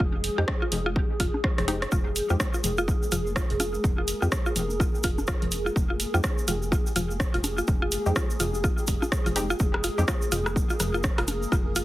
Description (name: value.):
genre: minimal techno.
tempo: 125 BPM.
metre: 4/4.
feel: swing 60% on 16ths.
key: F minor.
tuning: A4 = 440 Hz.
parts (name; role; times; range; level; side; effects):
mallet-like synth pluck; riff; 0.0-11.8 s; Eb4 to C5; -31 LUFS; equal; chorus, sidechain pumping, dub echo.
rubbery square bass; bass; 0.0-11.8 s; F1 to F2; -30 LUFS; equal; sidechain pumping.
electronic kick drum; drums; 0.0-11.6 s; none; -26 LUFS; equal; overdrive.
granular cloud pad; texture; 0.0-11.8 s; Ab4; -33 LUFS; equal; built-in reverb, sidechain pumping.
swarming drone; texture; 0.0-11.8 s; F3 to Bb4; -41 LUFS; equal; none.
house drum kit; drums; 0.2-11.8 s; hi-hat, rim click; -31 LUFS; right 1 dB; overdrive.
filtered dub chord stab; stabs; 0.4-10.0 s; Ab3 to G4; -33 LUFS; left 2 dB; chorus, tape echo.
electronic bongos, congas and rim click; percussion; 0.5-11.6 s; none; -33 LUFS; left 2 dB; tape echo.
cabasa; percussion; 1.9-11.8 s; none; -37 LUFS; right 2 dB; none.
room: moderate studio reverb, RT60 0.5 s.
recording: heavily compressed radio sound.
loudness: -23 LUFS.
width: side -16 dB against mid.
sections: 0.0-11.8 A section.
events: drum fill 1.4-1.9.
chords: 0.0 Fm.